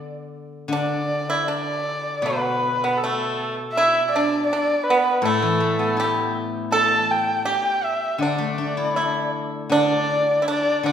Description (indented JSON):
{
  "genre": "chinese traditional, Chinese chamber ensemble",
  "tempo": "80 BPM",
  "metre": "4/4",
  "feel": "rubato",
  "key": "D zhi mode",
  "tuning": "A4 = 440 Hz",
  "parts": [
    { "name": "steel-string zither", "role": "accompaniment", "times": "0.0-10.9 s", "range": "A2 to A4", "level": "-26 LUFS", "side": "left 4 dB", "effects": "none" },
    { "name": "dark erhu", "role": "melody", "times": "0.7-10.9 s", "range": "A4 to A5", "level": "-23 LUFS", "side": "equal", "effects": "none" },
    { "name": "pipa", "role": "second line", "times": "0.7-10.9 s", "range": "A3 to A4", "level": "-23 LUFS", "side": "right 3 dB", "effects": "none" }
  ],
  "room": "wet recital hall reverb, RT60 1.7 s",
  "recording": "recorded in a church or concert hall",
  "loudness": "-19 LUFS",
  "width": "side -8 dB against mid",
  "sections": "0.7-10.9 A section",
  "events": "none",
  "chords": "none",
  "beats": "| 0.71 1.47 2.24 3.00 | 3.75 4.50 5.24 5.98 | 6.72 7.46 8.20 8.95 | 9.71 10.47"
}